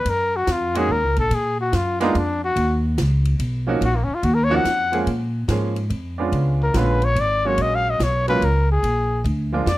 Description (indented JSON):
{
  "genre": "jazz, small-group swing and bop",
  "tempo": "144 BPM",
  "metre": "3/4",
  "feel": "swing 66% on 8ths",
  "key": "unclear",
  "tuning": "A4 = 440 Hz",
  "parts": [
    { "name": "breathy trumpet", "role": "melody", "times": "0.0-9.8 s", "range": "Bb3 to Gb5", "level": "-21 LUFS", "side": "left 2 dB", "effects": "none" },
    { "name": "upright bass", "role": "bass", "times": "0.0-9.8 s", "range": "Ab1 to Bb2", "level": "-21 LUFS", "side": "equal", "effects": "none" },
    { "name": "compact cocktail drum kit", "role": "drums", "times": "0.1-9.8 s", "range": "hi-hat, kick drum, ride cymbal, snare drum", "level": "-31 LUFS", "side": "equal", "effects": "none" },
    { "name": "clear baby grand piano", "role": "accompaniment", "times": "0.7-9.7 s", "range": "D3 to Ab4", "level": "-23 LUFS", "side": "right 4 dB", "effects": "none" }
  ],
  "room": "little or no reverb",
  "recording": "close, detailed microphones",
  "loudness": "-18 LUFS",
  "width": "side -16 dB against mid",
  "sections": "0.0-5.1 A section; 5.1-9.8 A section",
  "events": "trumpet solo 0.0-9.8",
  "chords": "0.1 Gb6; 1.3 Bb7; 2.6 Ebm9; 5.1 Bbm7; 6.3 Db7b9; 7.6 Gbadd9; 8.8 Bb7",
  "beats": "| 0.06 0.48 0.90 | 1.31 1.73 2.15 | 2.57 2.98 3.40 | 3.82 4.24 4.66 | 5.07 5.49 5.91 | 6.33 6.74 7.16 | 7.58 8.00 8.41 | 8.83 9.25 9.66"
}